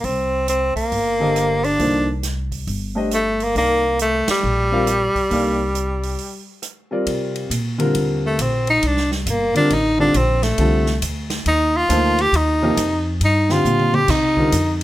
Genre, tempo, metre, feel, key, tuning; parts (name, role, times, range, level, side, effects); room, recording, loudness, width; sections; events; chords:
modal jazz; 137 BPM; 4/4; swing 65% on 8ths; C dorian; A4 = 440 Hz
bright tenor saxophone; melody; 0.0-14.8 s; G3 to G4; -18 LUFS; equal; plate reverb
upright bass; bass; 0.0-14.8 s; G1 to C3; -23 LUFS; equal
swinging big-band drum kit; drums; 0.0-14.8 s; crash cymbal, hi-hat, kick drum, ride cymbal, rim click, snare drum, toms; -28 LUFS; right 2 dB
warm grand piano; accompaniment; 1.2-14.5 s; C3 to F5; -21 LUFS; left 1 dB
moderate studio reverb, RT60 0.5 s; -16 LUFS; side -15 dB against mid
0.0-7.1 A section; 7.1-14.8 B section
band accent 4.2; break 6.2-7.1; tenor saxophone solo 7.1-14.8; drum fill 13.7-14.1
0.0 Cm9; 3.6 Eb; 7.1 Cm9; 10.6 Eb/C; 14.1 Cm9